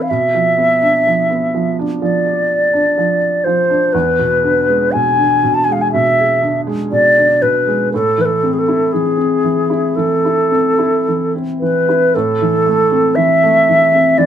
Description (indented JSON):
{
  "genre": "celtic folk, Celtic slow air",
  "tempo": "54-63 BPM",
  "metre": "4/4",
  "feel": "rubato",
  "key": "A harmonic minor",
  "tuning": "A4 = 441 Hz",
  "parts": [
    { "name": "hollow wooden flute", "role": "melody", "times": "0.0-14.3 s", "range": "G#4 to A5", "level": "-13 LUFS", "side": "equal", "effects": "none" },
    { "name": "felt-muted upright piano", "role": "accompaniment", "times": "0.0-14.3 s", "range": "E2 to D5", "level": "-17 LUFS", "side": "right 1 dB", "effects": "none" }
  ],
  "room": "moderate small room reverb, RT60 0.5 s",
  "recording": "band playing live in one room",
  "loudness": "-12 LUFS",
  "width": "side -9 dB against mid",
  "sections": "0.0-12.1 A section; 12.1-14.3 A section",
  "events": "none",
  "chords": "0.1 Bdim; 3.9 E7; 7.9 Am"
}